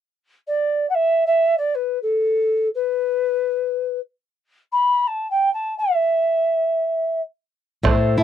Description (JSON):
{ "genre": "andean folk, Andean ensemble", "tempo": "free time", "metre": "none", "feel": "none", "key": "E minor", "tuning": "A4 = 440 Hz", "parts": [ { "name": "alto ocarina", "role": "melody", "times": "0.5-8.2 s", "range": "A4 to B5", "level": "-18 LUFS", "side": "equal", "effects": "none" }, { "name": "charango", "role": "accompaniment", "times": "7.8-8.2 s", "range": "E4 to A5", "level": "-23 LUFS", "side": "right 3 dB", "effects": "none" }, { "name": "nylon-string guitar", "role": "accompaniment", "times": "7.8-8.2 s", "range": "A2 to E4", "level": "-18 LUFS", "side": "equal", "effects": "none" }, { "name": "bombo", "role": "percussion", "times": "7.8-8.0 s", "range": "none", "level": "-20 LUFS", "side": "right 2 dB", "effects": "none" } ], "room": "light reverb", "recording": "dry, close 1970s-style studio recording", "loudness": "-18 LUFS", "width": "side -9 dB against mid", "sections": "0.0-7.8 A section", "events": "none", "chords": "none" }